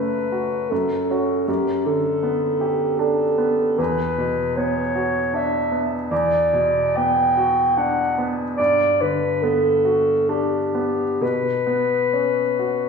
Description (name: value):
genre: classical, impressionist duo for clarinet and grand piano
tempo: 64-80 BPM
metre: 3/4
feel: rubato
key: unclear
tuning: A4 = 441 Hz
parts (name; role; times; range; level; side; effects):
- mellow clarinet; melody; 0.0-12.9 s; G4 to G5; -19 LUFS; left 1 dB; none
- clear baby grand piano; accompaniment; 0.0-12.9 s; E2 to G4; -24 LUFS; right 1 dB; none
room: wet recital hall reverb, RT60 1.5 s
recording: recorded in a church or concert hall, studio reverb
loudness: -18 LUFS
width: side -5 dB against mid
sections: 0.0-12.9 A section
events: none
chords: 0.0 F#m; 1.5 A9sus4/F#; 3.8 Esus2; 8.6 Gmaj7; 11.2 Bsus2